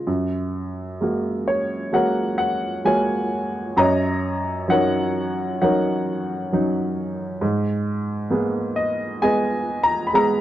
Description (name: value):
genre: classical, lyrical solo piano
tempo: 65 BPM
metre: 4/4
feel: rubato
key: F# major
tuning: A4 = 440 Hz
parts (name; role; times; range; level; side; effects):
- warm upright piano; solo; 0.0-10.4 s; F#2 to B5; -20 LUFS; equal; none
room: light reverb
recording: dark, warm production, nothing above 10.5 kHz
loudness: -20 LUFS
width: side -13 dB against mid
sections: 0.1-10.4 A section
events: none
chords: 0.1 F#add9; 3.8 D#m7/F#; 7.4 G#madd9